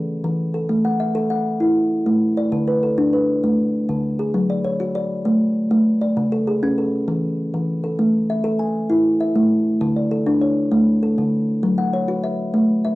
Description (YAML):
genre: southern african traditional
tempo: 132 BPM (dotted quarters)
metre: 12/8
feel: straight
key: A major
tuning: A4 = 439 Hz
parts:
  - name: kalimba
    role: solo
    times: 0.0-13.0 s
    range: C#3 to G#5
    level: -17 LUFS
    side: equal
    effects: none
room: moderate studio reverb, RT60 0.6 s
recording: home recording on cassette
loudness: -17 LUFS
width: side -19 dB against mid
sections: 0.0-8.0 A section; 8.0-13.0 B section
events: none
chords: 0.0 Esus4; 0.7 A5; 2.5 D5; 4.3 F#5; 5.3 Asus4; 6.2 C#5; 7.1 Esus4; 8.0 A5; 9.8 D5; 11.6 F#5